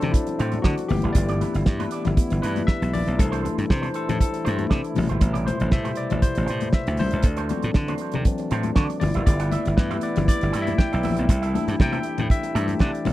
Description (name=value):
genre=disco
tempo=118 BPM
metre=4/4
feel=straight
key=unclear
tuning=A4 = 441 Hz
part: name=barky tine electric piano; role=accompaniment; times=0.0-13.1 s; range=B2 to G5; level=-28 LUFS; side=left 4 dB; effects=none
part: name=electric guitar with an envelope filter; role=accompaniment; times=0.0-13.1 s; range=D4 to F#5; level=-34 LUFS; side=right 7 dB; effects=none
part: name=mellow French horn section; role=sustained chords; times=0.0-13.1 s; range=C3 to E4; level=-31 LUFS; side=right 2 dB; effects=none
part: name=slap bass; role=bass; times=0.0-13.1 s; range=F#1 to D3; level=-24 LUFS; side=equal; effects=none
part: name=damped 70s drum kit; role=drums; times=0.0-13.1 s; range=hi-hat, kick drum, snare drum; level=-19 LUFS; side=right 1 dB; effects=none
part: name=congas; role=percussion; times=0.0-13.1 s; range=none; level=-31 LUFS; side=left 8 dB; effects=none
room=little or no reverb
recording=dry, close 1970s-style studio recording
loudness=-20 LUFS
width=side -15 dB against mid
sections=0.0-13.1 A section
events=tine electric piano solo 0.0-13.1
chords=0.0 D7; 0.9 G6; 3.2 C6; 5.0 Am7; 7.2 D7; 9.0 G6; 11.3 C6